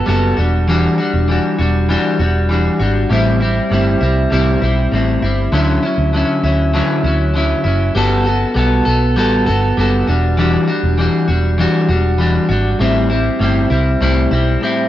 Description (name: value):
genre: indie pop, bedroom pop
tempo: 99 BPM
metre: 4/4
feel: straight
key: unclear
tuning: A4 = 440 Hz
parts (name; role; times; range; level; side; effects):
- electric guitar at the edge of break-up; accompaniment; 0.0-14.9 s; A2 to A4; -15 LUFS; left 1 dB; lush chorus, warbly pitch drift
- hollow-body short-scale picked electric bass; bass; 0.1-14.6 s; E1 to D2; -16 LUFS; equal; none
room: moderate plate reverb, RT60 3.4 s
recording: dark, warm production, nothing above 7.5 kHz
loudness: -12 LUFS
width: side -13 dB against mid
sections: 0.0-14.9 A section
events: none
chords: 0.4 Em9; 3.1 Am7; 5.5 Dmaj9; 8.0 Gmaj9; 10.1 Em9; 12.8 Am7